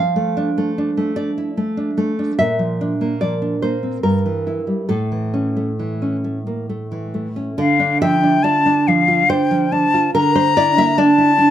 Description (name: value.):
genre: romantic duo for flute and classical guitar.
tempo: 66-76 BPM.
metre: 3/4.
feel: rubato.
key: D minor.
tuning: A4 = 438 Hz.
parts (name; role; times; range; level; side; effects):
nylon-string guitar; accompaniment; 0.0-11.5 s; G2 to F5; -17 LUFS; right 1 dB; none.
bright silver concert flute; melody; 7.6-11.5 s; F5 to Bb5; -15 LUFS; left 4 dB; none.
room: light reverb.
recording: none.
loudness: -15 LUFS.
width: side -11 dB against mid.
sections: 0.0-7.6 A section; 7.6-11.5 B section.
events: none.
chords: 0.0 Dm/F; 2.4 Bb; 4.0 Edim/G; 4.9 A; 7.6 Dm; 10.1 C13/D.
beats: 0.78 1.57 | 2.39 3.21 4.04 | 4.89 5.79 6.69 | 7.58 8.45 9.30 | 10.14 10.97.